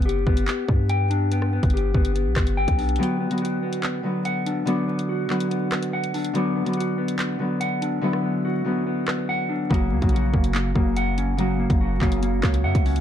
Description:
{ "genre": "hip hop, drill", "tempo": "143 BPM", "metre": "4/4", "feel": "half-time", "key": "B harmonic minor", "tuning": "A4 = 441 Hz", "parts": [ { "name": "mellow electric guitar", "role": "arpeggios", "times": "0.0-13.0 s", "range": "A#3 to G5", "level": "-26 LUFS", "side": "left 2 dB", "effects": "low-pass filter, digital delay" }, { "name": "hard-hitting 808-style bass", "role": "bass", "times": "0.0-3.0, 9.7-13.0 s", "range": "F#1 to G2", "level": "-23 LUFS", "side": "equal", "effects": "none" }, { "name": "drill drum kit", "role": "drums", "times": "0.0-13.0 s", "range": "handclaps, hi-hat, kick drum, rim click", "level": "-24 LUFS", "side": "equal", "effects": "none" }, { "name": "Celtic harp", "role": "accompaniment", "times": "3.0-13.0 s", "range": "C#3 to F#5", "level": "-25 LUFS", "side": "left 1 dB", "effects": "low-pass filter" } ], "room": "little or no reverb", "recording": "dark, warm production, vinyl crackle", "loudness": "-20 LUFS", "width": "side -10 dB against mid", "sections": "0.0-13.0 A section", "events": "break 3.0-9.7; hi-hats muted 8.0-9.7", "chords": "0.0 G; 3.0 Bm; 9.7 F#", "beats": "0.06 0.48 0.90 | 1.31 1.74 2.15 2.57 | 2.99 3.41 3.83 4.25 | 4.67 5.09 5.51 5.93 | 6.35 6.77 7.19 7.61 | 8.03 8.45 8.87 9.29 | 9.71 10.13 10.55 10.96 | 11.38 11.80 12.22 12.64" }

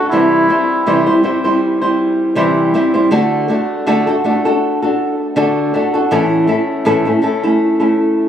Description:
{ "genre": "acoustic pop", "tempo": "80 BPM", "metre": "4/4", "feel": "swing 55% on 16ths", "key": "D major", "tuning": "A4 = 440 Hz", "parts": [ { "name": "warm trumpet", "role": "melody", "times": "0.0-1.2 s", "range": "E4", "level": "-17 LUFS", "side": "right 1 dB", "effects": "none" }, { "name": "flamenco guitar", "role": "accompaniment", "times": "0.0-8.3 s", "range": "A2 to C5", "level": "-12 LUFS", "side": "equal", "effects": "none" } ], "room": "moderate huge ambient reverb, RT60 4.7 s", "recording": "recorded on a phone in the room, studio ambience, compression", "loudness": "-12 LUFS", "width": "side -9 dB against mid", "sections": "0.0-8.3 A section", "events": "none", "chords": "0.1 C; 3.1 D; 6.1 A", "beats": "| 0.11 0.86 1.61 2.36 | 3.11 3.85 4.60 5.35 | 6.10 6.85 7.60" }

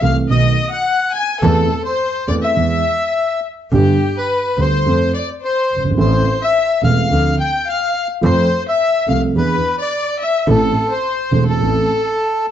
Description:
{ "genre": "tango", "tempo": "106 BPM", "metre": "4/4", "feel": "rubato", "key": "A minor", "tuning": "A4 = 440 Hz", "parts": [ { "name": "bandoneon", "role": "melody", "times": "0.0-12.5 s", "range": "G4 to G#5", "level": "-19 LUFS", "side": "equal", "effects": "plate reverb" }, { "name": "rich violin", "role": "second line", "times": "0.0-12.5 s", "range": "G4 to G#5", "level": "-21 LUFS", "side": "left 7 dB", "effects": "none" }, { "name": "dark concert grand piano", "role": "accompaniment", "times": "0.0-11.9 s", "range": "E1 to A4", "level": "-17 LUFS", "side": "right 3 dB", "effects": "none" }, { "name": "clear double bass", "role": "bass", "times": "0.0-11.9 s", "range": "E1 to F2", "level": "-19 LUFS", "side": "equal", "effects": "none" } ], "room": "moderate large studio reverb, RT60 0.8 s", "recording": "dark, warm production, nothing above 7.8 kHz", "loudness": "-14 LUFS", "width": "side -10 dB against mid", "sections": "0.0-12.5 A section", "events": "none", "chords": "0.3 B7; 1.4 Am/E; 2.6 E; 3.7 G; 4.9 F; 6.0 Am; 7.1 Dm7; 8.2 F; 9.3 E7; 10.5 Am", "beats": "0.31 0.87 | 1.43 2.00 2.57 3.15 | 3.73 4.30 4.86 5.42 | 5.99 6.55 7.11 7.67 | 8.23 8.79 9.35 9.91 | 10.48 11.04 11.62 12.20" }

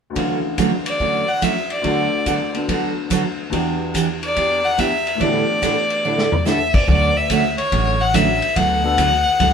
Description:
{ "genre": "country, western swing", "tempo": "143 BPM", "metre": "4/4", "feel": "swing 67% on 8ths", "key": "D major", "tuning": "A4 = 440 Hz", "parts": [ { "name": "bright upright piano", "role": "accompaniment", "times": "0.1-9.0 s", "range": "D2 to A4", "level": "-25 LUFS", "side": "left 3 dB", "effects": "none" }, { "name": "picked steel-string acoustic guitar", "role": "accompaniment", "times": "0.2-9.5 s", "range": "A2 to A4", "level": "-21 LUFS", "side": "right 5 dB", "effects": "none" }, { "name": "vintage drum kit", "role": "drums", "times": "0.2-9.5 s", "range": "crash cymbal, hi-hat, kick drum, ride cymbal, snare drum, toms", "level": "-24 LUFS", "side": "left 1 dB", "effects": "none" }, { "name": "clear fiddle", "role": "melody", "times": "0.9-9.5 s", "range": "C#5 to F#5", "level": "-19 LUFS", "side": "left 2 dB", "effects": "none" }, { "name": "upright bass", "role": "bass", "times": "6.9-9.5 s", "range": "A1 to D2", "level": "-21 LUFS", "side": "equal", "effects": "none" } ], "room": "moderate studio reverb, RT60 0.6 s", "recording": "band playing live in one room", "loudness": "-16 LUFS", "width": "side -7 dB against mid", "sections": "0.2-6.9 A section; 6.9-9.5 B section", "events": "drum fill 6.0-6.5", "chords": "0.2 Dmaj9; 1.8 Bm7/D; 3.5 Em7; 5.2 A7sus4; 6.9 Dmaj9; 8.6 Bm7/D", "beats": "| 0.16 0.58 1.00 1.42 | 1.84 2.26 2.68 3.10 | 3.52 3.94 4.36 4.78 | 5.20 5.62 6.04 6.46 | 6.88 7.30 7.72 8.14 | 8.56 8.98 9.40" }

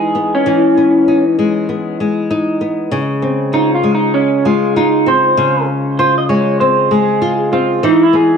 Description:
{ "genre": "indie pop", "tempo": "98 BPM", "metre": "4/4", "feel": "swing 60% on 16ths", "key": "Db major", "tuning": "A4 = 442 Hz", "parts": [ { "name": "electric guitar through a small old amp", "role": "melody", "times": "0.0-8.4 s", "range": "Db4 to Eb5", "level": "-14 LUFS", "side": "right 3 dB", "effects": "wide subtle chorus, plate reverb, tape echo" }, { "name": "flamenco guitar", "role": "accompaniment", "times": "0.0-8.4 s", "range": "Db3 to F4", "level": "-14 LUFS", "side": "left 2 dB", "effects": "wide subtle chorus, vibrato effect, plate reverb" } ], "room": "moderate studio reverb, RT60 0.6 s", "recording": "cassette tape", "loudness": "-11 LUFS", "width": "side -6 dB against mid", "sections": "0.0-8.4 A section", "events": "clean electric guitar solo 0.0-8.4", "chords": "0.0 Emaj7; 2.9 Dbmaj7; 7.8 Emaj7", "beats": "| 0.46 1.08 1.69 2.31 | 2.92 3.53 4.15 4.76 | 5.37 5.99 6.60 7.21 | 7.83" }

